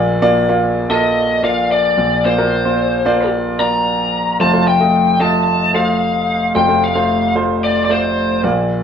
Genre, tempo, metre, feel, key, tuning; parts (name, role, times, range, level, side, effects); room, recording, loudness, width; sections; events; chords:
pop; 111 BPM; 4/4; straight; F mixolydian; A4 = 444 Hz
warm grand piano; accompaniment; 0.0-8.8 s; F1 to Eb5; -15 LUFS; right 1 dB
lead guitar through a small cranked amp; melody; 0.9-8.4 s; C5 to Bb5; -16 LUFS; left 2 dB; overdrive
wet studio reverb, RT60 0.9 s; band playing live in one room, nothing above 10.3 kHz; -13 LUFS; side -7 dB against mid
0.0-8.8 A section
0.0 Bb; 4.4 F